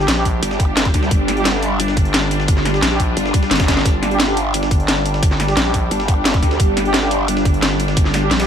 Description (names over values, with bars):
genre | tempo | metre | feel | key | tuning
dark technical drum and bass | 175 BPM | 4/4 | straight | G minor | A4 = 439 Hz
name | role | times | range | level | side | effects
swarming drone | sustained chords | 0.0-8.5 s | G3 to G4 | -21 LUFS | equal | built-in reverb, phaser, sidechain pumping
dark brass ensemble | stabs | 0.0-8.5 s | G3 to G4 | -26 LUFS | equal | dub echo
growling FM bass | bass | 0.0-8.5 s | G1 to Bb1 | -20 LUFS | equal | none
breakbeat sampler-style drum kit | drums | 0.0-8.5 s | hi-hat, snare drum | -28 LUFS | equal | high-pass filter on hats, high-pass filter on snare
drum and bass drum kit | drums | 0.1-8.4 s | hi-hat, snare drum | -20 LUFS | left 1 dB | none
electronic kick drum | drums | 0.3-8.0 s | none | -16 LUFS | equal | none
growl bass | bass | 0.4-7.4 s | G1 to D2 | -21 LUFS | equal | chorus, overdrive
swell | sound effects | 3.3-3.9 s | none | -28 LUFS | left 4 dB | none
room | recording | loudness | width
light reverb | none | -14 LUFS | side -8 dB against mid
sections
0.0-8.5 A section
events
swell 3.3-3.9; drum fill 3.6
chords
0.0 Gm